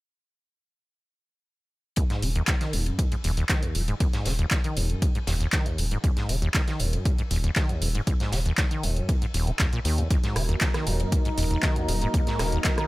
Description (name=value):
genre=acid house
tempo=118 BPM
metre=4/4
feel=straight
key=Eb minor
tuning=A4 = 442 Hz
part: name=acid bass, saw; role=riff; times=2.0-12.9 s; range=Eb2 to Eb3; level=-29 LUFS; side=equal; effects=tube saturation, analog chorus, sidechain pumping, digital delay
part: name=electronic kick drum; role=drums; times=2.0-12.8 s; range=none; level=-24 LUFS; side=equal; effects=none
part: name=punchy analog drum machine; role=drums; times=2.0-12.9 s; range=handclaps, hi-hat, rim click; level=-30 LUFS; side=right 1 dB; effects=none
part: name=tight metal drum kit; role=drums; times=2.0-12.8 s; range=ride cymbal, snare drum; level=-38 LUFS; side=left 2 dB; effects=sidechain pumping on cymbals, high-pass filter on cymbals, high-pass filter on snare, high-pass filter on room
part: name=round analog bass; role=bass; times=2.2-12.6 s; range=Eb1 to Eb2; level=-27 LUFS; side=equal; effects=tube saturation, sidechain pumping
part: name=lush unison pad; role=sustained chords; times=10.1-12.9 s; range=Gb3 to Bb4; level=-30 LUFS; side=equal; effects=chorus, sidechain pumping
room=little or no reverb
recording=none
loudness=-23 LUFS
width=side -19 dB against mid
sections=2.0-12.9 A section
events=none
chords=2.0 Ebm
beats=| 1.97 2.48 2.99 3.50 | 4.00 4.51 5.02 5.53 | 6.04 6.55 7.05 7.56 | 8.07 8.58 9.09 9.60 | 10.11 10.61 11.12 11.63 | 12.14 12.65